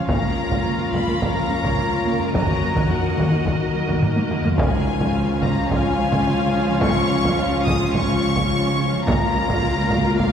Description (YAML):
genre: cinematic, hybrid orchestral and electronic film score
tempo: 107 BPM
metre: 4/4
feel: straight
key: unclear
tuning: A4 = 440 Hz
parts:
  - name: warm symphonic violin section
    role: melody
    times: 0.0-10.3 s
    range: F5 to Eb6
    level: -26 LUFS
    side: left 3 dB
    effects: none
  - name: warm symphonic violin section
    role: second line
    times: 0.0-10.3 s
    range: F4 to F5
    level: -28 LUFS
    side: left 2 dB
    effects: none
  - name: warm symphonic viola section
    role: accompaniment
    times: 0.0-10.3 s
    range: F3 to Gb4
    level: -28 LUFS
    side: right 1 dB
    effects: none
  - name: mellow French horn section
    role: sustained chords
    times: 0.0-10.3 s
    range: Bb3 to Gb4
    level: -28 LUFS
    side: left 2 dB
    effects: none
  - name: metallic inharmonic drone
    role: sustained chords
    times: 0.0-10.3 s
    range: Eb3 to Db5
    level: -29 LUFS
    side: left 1 dB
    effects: chorus, built-in reverb
  - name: warbly dusty pluck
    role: arpeggios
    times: 0.0-10.3 s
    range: Db3 to Bb4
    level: -28 LUFS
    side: equal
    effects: none
  - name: clear baby grand piano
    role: texture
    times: 0.0-2.4, 6.3-9.1 s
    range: F4 to Cb6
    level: -37 LUFS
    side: right 1 dB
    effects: none
  - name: rich symphonic cello section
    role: bass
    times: 0.1-10.3 s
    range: Db2 to Eb2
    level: -24 LUFS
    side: right 1 dB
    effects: none
  - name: taiko ensemble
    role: drums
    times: 0.1-10.3 s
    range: none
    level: -24 LUFS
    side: equal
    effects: none
room: wet scoring stage reverb, RT60 1.6 s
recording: heard from further back in the room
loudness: -18 LUFS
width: side -8 dB against mid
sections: 0.0-10.3 A section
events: drum fill 4.0-4.6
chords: 0.1 Bbm/Db; 2.3 Ebm; 4.6 Db; 9.1 Bbm/Db